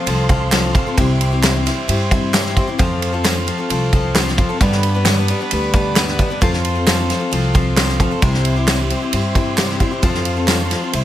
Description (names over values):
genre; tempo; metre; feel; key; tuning
indie folk with a building arrangement; 133 BPM; 4/4; straight; unclear; A4 = 440 Hz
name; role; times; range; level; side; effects
picked steel-string acoustic guitar; accompaniment; 0.0-11.0 s; G2 to B4; -21 LUFS; left 4 dB; none
mellow tonewheel organ; sustained chords; 0.0-11.0 s; G4 to C6; -24 LUFS; right 1 dB; slow rotary speaker
upright bass; bass; 0.1-11.0 s; C2 to G2; -20 LUFS; equal; none
natural country drum kit; drums; 0.1-11.0 s; kick drum, ride cymbal, snare drum; -18 LUFS; equal; none
group handclap; percussion; 0.5-10.6 s; none; -24 LUFS; right 3 dB; none
tambourine; percussion; 0.5-10.6 s; none; -30 LUFS; right 7 dB; none
room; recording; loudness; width
light reverb, small room ambience; none; -14 LUFS; side -12 dB against mid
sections
0.0-11.0 A section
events
none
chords
0.0 F; 1.0 C; 2.8 F; 4.6 G; 6.4 F; 8.2 C; 10.0 F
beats
0.07 0.52 | 0.98 1.43 1.89 2.34 | 2.79 3.25 3.70 4.16 | 4.61 5.06 5.52 5.97 | 6.42 6.87 7.32 7.78 | 8.23 8.68 9.13 9.58 | 10.03 10.48 10.94